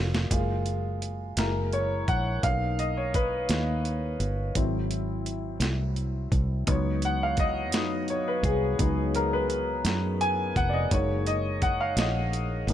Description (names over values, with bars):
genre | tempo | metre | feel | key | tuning
slow gospel | 56 BPM (dotted quarters) | 6/8 | straight | F# major | A4 = 440 Hz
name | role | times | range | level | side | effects
warm baby grand piano | accompaniment | 0.0-12.7 s | F#3 to G#5 | -28 LUFS | left 1 dB | none
fingered electric bass | bass | 0.0-12.7 s | E#1 to F#2 | -29 LUFS | equal | none
dusty soul sampler-style drum kit | drums | 0.1-12.7 s | hi-hat, kick drum, snare drum | -30 LUFS | right 1 dB | overdrive
room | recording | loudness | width
light reverb | none | -25 LUFS | side -11 dB against mid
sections
0.3-12.7 A section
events
drum fill 0.0-0.3; grand piano solo 0.3-12.7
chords
0.3 F#maj7; 1.4 F#7; 2.4 Bmaj9; 4.6 G#aug7; 6.7 C#7sus4; 10.9 F#6